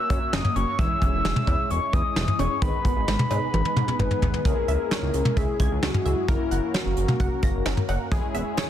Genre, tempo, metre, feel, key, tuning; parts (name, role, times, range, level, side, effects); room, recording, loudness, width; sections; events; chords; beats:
synth-pop; 131 BPM; 4/4; straight; C# dorian; A4 = 440 Hz
soft octave-layered synth lead; melody; 0.0-7.7 s; E4 to E6; -27 LUFS; left 2 dB; chorus
mellow synth brass; accompaniment; 0.0-8.7 s; G#3 to C#5; -31 LUFS; left 1 dB; chorus, phaser
chorused synth bass; bass; 0.1-8.4 s; E1 to G#2; -27 LUFS; equal
soft brush drum kit; drums; 0.1-8.7 s; cowbell, hi-hat, kick drum, snare drum, toms; -24 LUFS; equal; soft clipping on snare
wide unison pluck; arpeggios; 0.3-8.7 s; D#3 to A#6; -35 LUFS; right 3 dB; tape echo
light reverb, small room ambience; dense, heavily limited modern master; -21 LUFS; side -10 dB against mid
0.0-4.5 A section; 4.5-8.7 B section
drum fill 3.5-4.5
0.0 F#; 0.8 C#m/E; 2.6 G#m; 4.5 C#m; 6.3 F#; 8.1 C#m/E
0.33 | 0.79 1.25 1.70 2.16 | 2.62 3.08 3.54 4.00 | 4.45 4.91 5.37 5.83 | 6.29 6.74 7.20 7.66 | 8.12 8.57